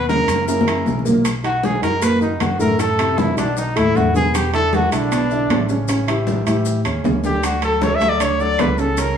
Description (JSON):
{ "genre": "Afro-Cuban jazz", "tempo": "155 BPM", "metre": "4/4", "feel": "straight", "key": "unclear", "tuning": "A4 = 440 Hz", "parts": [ { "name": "bright trumpet", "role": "melody", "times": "0.0-9.2 s", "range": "D4 to E5", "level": "-20 LUFS", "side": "equal", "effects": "none" }, { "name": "growling trombone", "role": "second line", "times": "0.0-1.0 s", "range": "A#3", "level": "-23 LUFS", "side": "equal", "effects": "none" }, { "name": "warm grand piano", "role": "accompaniment", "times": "0.0-9.1 s", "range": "A2 to D5", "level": "-21 LUFS", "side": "equal", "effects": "none" }, { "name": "fingered electric bass", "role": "bass", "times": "0.0-9.2 s", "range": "A1 to A2", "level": "-23 LUFS", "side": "equal", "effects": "none" }, { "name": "bongos", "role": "percussion", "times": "0.1-9.2 s", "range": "none", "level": "-27 LUFS", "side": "left 3 dB", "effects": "none" }, { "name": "congas", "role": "percussion", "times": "0.1-9.2 s", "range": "none", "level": "-25 LUFS", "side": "equal", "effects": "none" }, { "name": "maracas", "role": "percussion", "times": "0.1-9.2 s", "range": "none", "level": "-35 LUFS", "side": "left 5 dB", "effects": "none" }, { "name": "timbales", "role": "percussion", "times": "0.3-9.2 s", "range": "none", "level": "-26 LUFS", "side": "right 4 dB", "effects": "none" }, { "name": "claves", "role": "percussion", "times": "0.7-8.8 s", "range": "none", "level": "-36 LUFS", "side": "left 3 dB", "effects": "none" } ], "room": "wet studio reverb, RT60 0.8 s", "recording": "band playing live in one room, small room ambience", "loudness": "-15 LUFS", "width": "side -8 dB against mid", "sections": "0.0-1.3 A section; 1.3-9.2 B section", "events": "drum fill 0.1-1.3; trumpet solo 1.3-9.2", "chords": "0.5 F#7; 1.3 Bmaj7; 2.8 F#m7b5; 3.6 B7; 4.3 E5; 5.9 A7; 7.4 Dmaj7" }